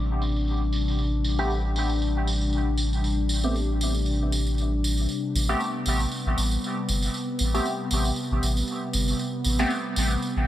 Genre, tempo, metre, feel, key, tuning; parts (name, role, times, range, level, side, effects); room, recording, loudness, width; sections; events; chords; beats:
dub techno; 117 BPM; 4/4; swing 56% on 16ths; A minor; A4 = 440 Hz
warbly tape-like pad; sustained chords; 0.0-10.5 s; C3 to D4; -29 LUFS; left 2 dB; chorus, built-in reverb, tremolo
soft dub sub bass; bass; 0.0-10.4 s; G1 to A1; -25 LUFS; equal
tambourine; percussion; 0.2-10.3 s; -32 LUFS; right 2 dB
resonant sweep polysynth; stabs; 1.4-9.7 s; A3 to G4; -31 LUFS; equal; chorus, phaser, dub echo
light reverb; vinyl crackle, low-pass filter; -23 LUFS; side -13 dB against mid
0.0-5.1 A section; 5.1-10.5 B section
filter sweep on analog polysynth 0.0-5.1, 5.1-10.5; filter sweep 0.0-5.1
0.0 Am7; 5.1 Am9
0.47 | 0.99 1.50 2.01 2.53 | 3.04 3.55 4.06 4.58 | 5.09 5.60 6.12 6.63 | 7.14 7.65 8.17 8.68 | 9.19 9.71 10.22